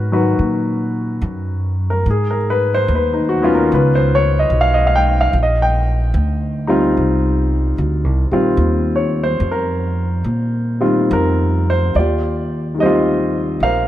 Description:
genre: jazz ballad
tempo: 73 BPM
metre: 4/4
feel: swing 66% on 8ths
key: Eb major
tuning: A4 = 440 Hz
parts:
  - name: warm baby grand piano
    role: accompaniment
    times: 0.0-13.9 s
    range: D#3 to G5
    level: -16 LUFS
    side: left 1 dB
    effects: none
  - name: upright bass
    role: bass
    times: 0.0-13.9 s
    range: Bb1 to A#2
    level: -18 LUFS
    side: equal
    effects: none
room: light reverb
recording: none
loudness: -14 LUFS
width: side -13 dB against mid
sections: 0.0-12.0 A section; 12.0-13.9 B section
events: none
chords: 0.0 Bmaj7; 2.1 Abm; 3.7 Db9; 5.3 Eb69

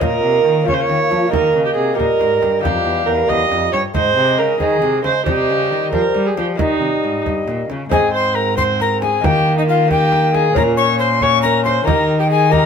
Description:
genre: classical, renaissance-style consort dance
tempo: 91 BPM (dotted quarters)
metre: 6/8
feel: straight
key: unclear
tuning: A4 = 440 Hz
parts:
  - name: alto recorder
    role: melody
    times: 0.0-12.7 s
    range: C5 to Db6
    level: -20 LUFS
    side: left 6 dB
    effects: none
  - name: warm viola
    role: second line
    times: 0.0-12.7 s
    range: Eb4 to Eb5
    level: -18 LUFS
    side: right 5 dB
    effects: none
  - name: lute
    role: accompaniment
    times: 0.0-12.7 s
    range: E2 to G4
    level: -24 LUFS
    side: left 4 dB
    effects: none
  - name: mellow bassoon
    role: accompaniment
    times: 0.0-12.7 s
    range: G3 to Eb4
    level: -22 LUFS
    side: left 1 dB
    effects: none
  - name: rich cello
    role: bass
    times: 0.0-12.7 s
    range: E2 to G3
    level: -22 LUFS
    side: equal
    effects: none
  - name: frame drum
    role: percussion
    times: 0.0-12.7 s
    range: none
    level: -23 LUFS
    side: right 2 dB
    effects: none
room: moderate stone room reverb, RT60 1.0 s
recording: minimal, uncompressed stereo recording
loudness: -13 LUFS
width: side -6 dB against mid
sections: 0.0-7.9 A section; 7.9-12.7 A section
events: none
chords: 0.0 Bbm; 1.3 Eb; 3.9 Ab; 5.3 Cm; 6.6 Eb; 7.9 Ab; 9.2 Eb; 10.6 Bbm; 11.9 Eb

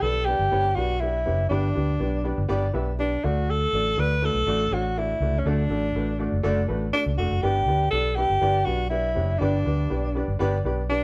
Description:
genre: uptempo 1960s-style soul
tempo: 122 BPM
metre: 4/4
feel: straight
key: unclear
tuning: A4 = 436 Hz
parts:
  - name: breathy tenor saxophone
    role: melody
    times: 0.0-11.0 s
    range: C#4 to B4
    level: -27 LUFS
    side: equal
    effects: none
  - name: dark upright piano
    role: accompaniment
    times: 0.0-11.0 s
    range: G2 to E5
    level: -31 LUFS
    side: equal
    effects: none
  - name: vintage muted fingered electric bass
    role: bass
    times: 0.0-11.0 s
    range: F1 to D2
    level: -28 LUFS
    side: equal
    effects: none
room: light reverb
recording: band playing live in one room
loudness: -24 LUFS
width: mono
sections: 0.0-11.0 A section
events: none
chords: 0.0 G; 3.2 D; 7.4 G

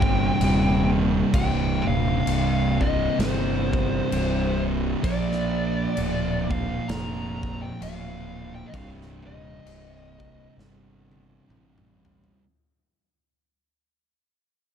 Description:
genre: stoner and doom metal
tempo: 65 BPM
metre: 4/4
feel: swing 58% on 8ths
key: C minor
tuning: A4 = 440 Hz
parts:
  - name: fuzz lead guitar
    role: melody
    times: 0.0-10.5 s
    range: C5 to Bb5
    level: -31 LUFS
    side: left 2 dB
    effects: distortion, slapback echo
  - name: thick fuzz guitar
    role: riff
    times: 0.0-12.4 s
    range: C2 to Bb3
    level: -28 LUFS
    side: left 9 dB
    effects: distortion
  - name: thick fuzz guitar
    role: riff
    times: 0.0-12.4 s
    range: C2 to Bb3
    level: -27 LUFS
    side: right 10 dB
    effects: distortion
  - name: fuzz fingered electric bass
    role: bass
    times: 0.0-12.3 s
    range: C1 to Bb1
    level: -28 LUFS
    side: equal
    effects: overdrive
  - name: big rock drum kit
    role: drums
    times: 0.0-12.4 s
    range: crash cymbal, kick drum, snare drum, toms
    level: -31 LUFS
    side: equal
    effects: none
room: little or no reverb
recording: dark, warm production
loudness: -21 LUFS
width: side -8 dB against mid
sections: 0.0-12.4 A section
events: fade-out 0.0-12.4; drum fill 10.6-12.4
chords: 0.0 Cm; 5.0 Bb; 8.7 Cm

